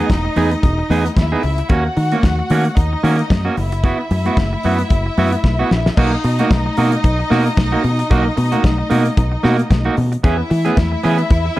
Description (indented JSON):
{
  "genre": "disco",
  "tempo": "112 BPM",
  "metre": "4/4",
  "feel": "swing 56% on 16ths",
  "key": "B major",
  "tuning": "A4 = 439 Hz",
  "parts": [
    { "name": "warm studio violin section", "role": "second line", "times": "0.0-11.6 s", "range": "D#4 to F#5", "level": "-23 LUFS", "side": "left 1 dB", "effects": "none" },
    { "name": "clean electric guitar", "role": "accompaniment", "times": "0.0-11.6 s", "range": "A#3 to G#4", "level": "-20 LUFS", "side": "right 4 dB", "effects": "none" },
    { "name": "fingered electric bass", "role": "bass", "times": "0.1-11.5 s", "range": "E1 to E3", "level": "-18 LUFS", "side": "equal", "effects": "none" },
    { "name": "damped 70s drum kit", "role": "drums", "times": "0.1-11.4 s", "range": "crash cymbal, hi-hat, kick drum, snare drum", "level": "-16 LUFS", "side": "equal", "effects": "none" },
    { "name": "congas", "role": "percussion", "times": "0.1-11.6 s", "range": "none", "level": "-26 LUFS", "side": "left 4 dB", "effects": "none" }
  ],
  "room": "light reverb, small room reverb",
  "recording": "none",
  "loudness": "-14 LUFS",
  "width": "side -16 dB against mid",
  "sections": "0.0-6.0 A section; 6.0-11.6 B section",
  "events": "drum fill 5.4-6.0",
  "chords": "0.0 Emaj7; 1.7 D#m7; 3.6 F#7sus4; 6.0 Bmaj7; 10.2 E6"
}